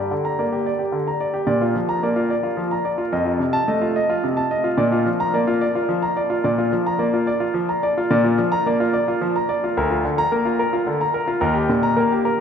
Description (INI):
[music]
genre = classical, baroque-style suite movement for grand piano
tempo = 73 BPM (dotted quarters)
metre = 12/8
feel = rubato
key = Bb major from 8.1 s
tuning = A4 = 440 Hz
[part]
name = clear concert grand piano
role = solo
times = 0.0-12.4 s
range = D2 to Bb5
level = -18 LUFS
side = equal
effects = none
[sound]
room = wet cathedral reverb, RT60 6.3 s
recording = none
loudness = -18 LUFS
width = side -7 dB against mid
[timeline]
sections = 0.0-12.4 A section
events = none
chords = 0.0 Gm; 1.5 Bb; 3.1 F7; 4.8 Bb; 9.8 Bb/D; 11.4 Eb